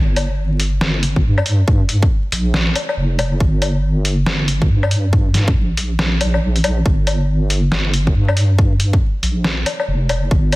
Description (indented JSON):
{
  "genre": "deep dubstep",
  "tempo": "139 BPM",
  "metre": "4/4",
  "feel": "swing 62% on 16ths, half-time",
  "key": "G minor",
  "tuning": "A4 = 440 Hz",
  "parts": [
    { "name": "deep soft wobble bass", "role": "bass", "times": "0.0-10.6 s", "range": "F1 to G2", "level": "-16 LUFS", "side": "equal", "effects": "chorus" },
    { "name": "trip hop sampler-style drum kit", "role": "drums", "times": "0.2-10.6 s", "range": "hi-hat, snare drum, woodblock", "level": "-21 LUFS", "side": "left 1 dB", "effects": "studio reverb" },
    { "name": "electronic kick drum", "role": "drums", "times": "1.2-10.4 s", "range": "none", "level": "-16 LUFS", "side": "equal", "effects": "studio reverb" }
  ],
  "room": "digital ambience",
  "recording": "dense, heavily limited modern master, vinyl crackle",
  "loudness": "-14 LUFS",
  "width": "side -20 dB against mid",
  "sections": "0.0-10.6 A section",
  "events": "none",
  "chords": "none"
}